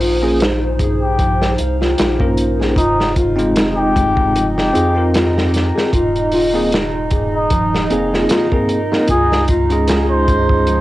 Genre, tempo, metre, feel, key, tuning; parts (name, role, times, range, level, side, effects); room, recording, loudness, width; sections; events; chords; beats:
trip hop; 76 BPM; 4/4; swing 55% on 16ths; F minor; A4 = 440 Hz
warbly tape-like pad; sustained chords; 0.0-10.8 s; Eb4 to Eb5; -22 LUFS; right 1 dB; chorus, built-in reverb, cassette tape
nylon-string guitar; arpeggios; 0.0-10.8 s; F3 to F5; -21 LUFS; left 2 dB; vintage 12-bit sampler grit, cassette tape, tape echo
soft dub sub bass; bass; 0.0-10.8 s; Eb1 to F2; -21 LUFS; equal; tube saturation
crunchy breakbeat drum kit; drums; 0.0-10.8 s; hi-hat, kick drum, snare drum; -19 LUFS; equal; cassette tape
bell-like tine electric piano; accompaniment; 0.2-10.8 s; Ab3 to Bb4; -19 LUFS; equal; harmonic tremolo, vintage 12-bit sampler grit, cassette tape
trumpet with cup mute; melody; 1.0-10.8 s; Eb4 to C5; -20 LUFS; left 1 dB; cassette tape, dub echo
light reverb; home recording on cassette; -13 LUFS; side -16 dB against mid
0.0-10.8 A section
0.0 Bbm7; 2.8 Fm7; 5.9 Abadd9/Eb; 9.1 Db
0.41 1.20 1.99 | 2.78 3.57 4.36 5.15 | 5.94 6.73 7.52 8.30 | 9.10 9.88 10.67